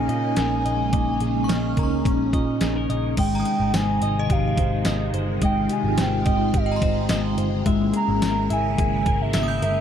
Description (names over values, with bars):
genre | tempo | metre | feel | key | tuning
dream pop | 107 BPM | 4/4 | straight | Ab major | A4 = 436 Hz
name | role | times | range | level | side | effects
warbly nostalgic lead | melody | 0.0-9.8 s | Eb5 to Bb5 | -27 LUFS | right 1 dB | chorus, tremolo, digital delay
phased string machine | sustained chords | 0.0-9.8 s | C3 to F4 | -26 LUFS | equal | ensemble chorus, phaser
clean electric guitar | arpeggios | 0.0-9.8 s | Ab3 to Fb5 | -26 LUFS | left 2 dB | wide subtle chorus, digital delay
vintage muted picked electric bass | bass | 0.0-9.8 s | G1 to Bb2 | -26 LUFS | equal | none
detuned 8-bit digital drum machine | drums | 0.1-9.8 s | crash cymbal, hi-hat, kick drum, snare drum, tambourine | -25 LUFS | equal | overdrive
synth chime | texture | 1.4-9.8 s | Eb5 to G6 | -36 LUFS | right 2 dB | ensemble chorus, phaser, digital delay
room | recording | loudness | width
digital ambience | dark, warm production | -19 LUFS | side -9 dB against mid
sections
0.0-3.2 A section; 3.2-9.8 B section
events
none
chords
0.0 Eb7sus4/Bb; 3.2 Abmaj7; 7.7 Dbm6/Ab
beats
0.37 | 0.93 1.49 2.05 2.61 | 3.17 3.73 4.30 4.86 | 5.42 5.98 6.54 7.10 | 7.66 8.22 8.78 9.34